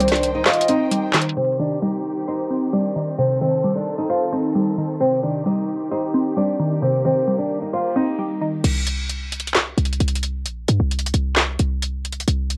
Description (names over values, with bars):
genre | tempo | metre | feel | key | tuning
hip hop, trap | 132 BPM | 4/4 | half-time | C dorian | A4 = 440 Hz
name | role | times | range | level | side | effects
flamenco guitar | melody | 0.0-8.6 s | C4 to F4 | -25 LUFS | equal | low-pass filter, cassette tape
gliding portamento lead | second line | 0.0-0.9 s | C5 to Eb5 | -25 LUFS | equal | chorus, cassette tape, analog delay
glassy wavetable pluck | accompaniment | 0.0-8.6 s | C3 to C5 | -25 LUFS | equal | chorus, low-pass filter, cassette tape
rich studio string section | sustained chords | 0.0-8.6 s | Eb3 to G5 | -32 LUFS | equal | cassette tape
short 808-style bass | bass | 0.0-0.4, 8.6-12.6 s | Bb1 to G2 | -24 LUFS | equal | none
trap drum kit | drums | 0.0-1.6, 8.6-12.6 s | crash cymbal, handclaps, hi-hat, snare drum | -24 LUFS | equal | none
room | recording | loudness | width
light reverb | home recording on cassette, low-pass filter | -21 LUFS | mono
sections
0.0-1.4 A section; 1.4-8.6 B section; 8.6-12.6 C section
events
kick muted 0.5-1.4; filter sweep 1.4-8.6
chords
0.0 Cm; 8.6 C5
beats
0.00 0.46 0.91 | 1.37 1.82 2.28 2.73 | 3.19 3.64 4.09 4.55 | 5.00 5.46 5.91 6.37 | 6.82 7.28 7.73 8.19 | 8.64 9.10 9.55 10.00 | 10.46 10.91 11.37 11.82 | 12.28